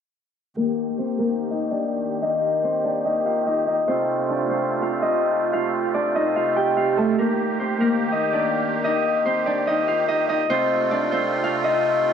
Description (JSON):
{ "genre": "hip hop", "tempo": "145 BPM", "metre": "4/4", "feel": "half-time", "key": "unclear", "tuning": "A4 = 442 Hz", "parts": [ { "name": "Celtic harp", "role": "melody", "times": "0.6-12.1 s", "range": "A3 to G5", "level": "-20 LUFS", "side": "left 1 dB", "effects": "low-pass filter, tape echo" }, { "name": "musette accordion", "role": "sustained chords", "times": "0.6-12.1 s", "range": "C3 to G4", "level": "-26 LUFS", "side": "right 3 dB", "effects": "low-pass filter" } ], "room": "moderate concert hall reverb, RT60 2.1 s", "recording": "dark, warm production", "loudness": "-20 LUFS", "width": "side -7 dB against mid", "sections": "0.6-12.1 A section", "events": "filter sweep 0.6-12.1", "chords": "0.6 Ebmaj7; 3.9 Dm7; 7.2 Ebmaj7; 10.5 Dm7", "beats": "| 0.57 0.98 1.39 1.81 | 2.22 2.64 3.05 3.46 | 3.88 4.29 4.71 5.12 | 5.53 5.95 6.36 6.77 | 7.19 7.60 8.02 8.43 | 8.84 9.26 9.67 10.08 | 10.50 10.91 11.32 11.74" }